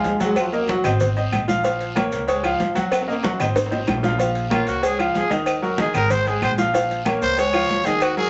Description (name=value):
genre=latin, salsa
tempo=188 BPM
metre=4/4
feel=straight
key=Bb minor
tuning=A4 = 439 Hz
part: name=clear trombone section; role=melody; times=0.0-1.0 s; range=Gb2 to F4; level=-26 LUFS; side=equal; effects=none
part: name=bright concert grand piano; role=accompaniment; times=0.0-8.3 s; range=Eb3 to Gb5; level=-26 LUFS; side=equal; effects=none
part: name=upright bass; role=bass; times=0.0-8.3 s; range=Ab1 to Eb2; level=-30 LUFS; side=equal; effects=none
part: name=cowbell and bongos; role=percussion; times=0.0-8.2 s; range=none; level=-28 LUFS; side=equal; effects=none
part: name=maracas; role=percussion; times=0.0-8.3 s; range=none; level=-45 LUFS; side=equal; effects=none
part: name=timbales and agogo bells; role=percussion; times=0.0-8.2 s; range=none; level=-31 LUFS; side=equal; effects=none
part: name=congas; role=percussion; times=0.1-8.3 s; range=none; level=-30 LUFS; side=equal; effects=none
part: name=guiro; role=percussion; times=0.1-8.3 s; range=none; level=-41 LUFS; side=equal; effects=none
part: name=claves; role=percussion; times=0.4-8.2 s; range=none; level=-36 LUFS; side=equal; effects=none
part: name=growling trumpet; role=melody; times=4.5-8.3 s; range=F4 to Db5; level=-24 LUFS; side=equal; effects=none
room=wet small room reverb, RT60 0.5 s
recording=vinyl crackle, nothing above 8.0 kHz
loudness=-21 LUFS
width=mono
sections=0.0-4.2 A section; 4.2-8.3 B section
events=drum fill 2.9-4.2; trumpet solo 4.2-8.3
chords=0.4 Ebm; 1.0 Ab; 1.6 Bbm; 2.3 Db; 2.9 Ebm; 3.6 Ab; 4.2 Bbm; 4.8 Db; 5.5 Ebm; 6.1 Ab; 6.7 Bbm; 7.4 Db